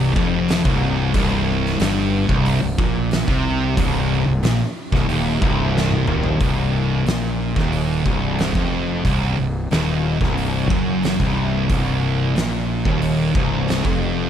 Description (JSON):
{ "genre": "stoner and doom metal", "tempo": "91 BPM", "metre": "4/4", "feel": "straight", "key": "C minor", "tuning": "A4 = 439 Hz", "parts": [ { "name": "distorted electric guitar", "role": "riff", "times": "0.0-14.3 s", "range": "C2 to C3", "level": "-26 LUFS", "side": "equal", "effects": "distortion" }, { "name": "fuzz guitar", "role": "riff", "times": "0.0-14.3 s", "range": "C2 to C3", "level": "-23 LUFS", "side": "left 8 dB", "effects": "distortion" }, { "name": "thick fuzz guitar", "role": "riff", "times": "0.0-14.3 s", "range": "C2 to C3", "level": "-23 LUFS", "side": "right 8 dB", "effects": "distortion" }, { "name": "fuzz fingered electric bass", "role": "bass", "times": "0.0-14.3 s", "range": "C1 to C2", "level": "-24 LUFS", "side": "equal", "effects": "overdrive" }, { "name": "oversized low-tuned drum kit", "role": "drums", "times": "0.2-14.0 s", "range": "hi-hat, kick drum, snare drum, toms", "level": "-23 LUFS", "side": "equal", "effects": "none" } ], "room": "studio reverb", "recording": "none", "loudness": "-17 LUFS", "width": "side -9 dB against mid", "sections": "0.0-6.4 A section; 6.4-14.3 B section", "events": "drum fill 5.7-6.4", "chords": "0.0 Cm", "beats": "0.49 | 1.15 1.80 2.46 3.12 | 3.77 4.43 5.09 5.75 | 6.41 7.07 7.73 8.39 | 9.05 9.71 10.37 11.03 | 11.70 12.36 13.02 13.68" }